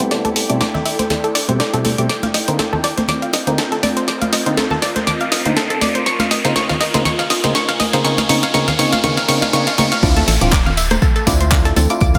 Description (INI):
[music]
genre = deep house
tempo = 121 BPM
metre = 4/4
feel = swing 55% on 16ths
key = D minor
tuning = A4 = 440 Hz
[part]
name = analog pluck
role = arpeggios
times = 0.0-12.2 s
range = A4 to D6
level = -23 LUFS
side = equal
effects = chorus, sidechain pumping, tape echo
[part]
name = percussive organ stab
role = stabs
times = 0.0-12.2 s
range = B2 to A4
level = -23 LUFS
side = equal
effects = analog chorus, delay
[part]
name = breakbeat sampler-style drum kit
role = drums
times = 0.0-12.1 s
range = hi-hat, snare drum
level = -29 LUFS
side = equal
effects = none
[part]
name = deep house drum kit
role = drums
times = 0.0-12.2 s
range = handclaps, hi-hat, rim click, snare drum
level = -23 LUFS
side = equal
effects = high-pass filter on snare, high-pass filter on hats, high-pass filter on room
[part]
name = riser, swell and downlifter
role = sound effects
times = 0.2-12.2 s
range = none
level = -27 LUFS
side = equal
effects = none
[part]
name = granular cloud pad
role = texture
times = 0.0-10.0 s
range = C4 to Ab5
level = -28 LUFS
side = equal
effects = built-in reverb, sidechain pumping
[part]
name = congas and bongos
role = percussion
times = 0.3-12.2 s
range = none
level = -27 LUFS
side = equal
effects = sidechain pumping on perc
[part]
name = organ-like FM bass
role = bass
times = 10.0-12.2 s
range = D1 to D2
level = -20 LUFS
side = equal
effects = sidechain pumping
[part]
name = electronic kick drum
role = drums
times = 10.0-12.2 s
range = none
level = -18 LUFS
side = equal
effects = none
[part]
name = tambourine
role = percussion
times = 10.0-12.2 s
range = none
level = -30 LUFS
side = equal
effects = none
[sound]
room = moderate lush hall reverb, RT60 2.0 s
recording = none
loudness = -16 LUFS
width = mono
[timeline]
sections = 0.0-10.0 A section; 10.0-12.2 B section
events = build-up 0.0-10.0; drum fill 0.0-10.0; filter sweep on synth stab 0.0-10.0; filter sweep on synth arpeggio sound 0.0-10.0; riser 0.2-10.0; swell 9.0-10.0; drop 10.0-12.2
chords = 0.0 Am9; 2.1 Cm9; 6.1 Bbm9; 10.0 Dm9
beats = | 0.11 0.61 1.10 1.60 | 2.10 2.59 3.09 3.58 | 4.08 4.57 5.07 5.57 | 6.06 6.56 7.05 7.55 | 8.05 8.54 9.04 9.53 | 10.03 10.53 11.02 11.52 | 12.01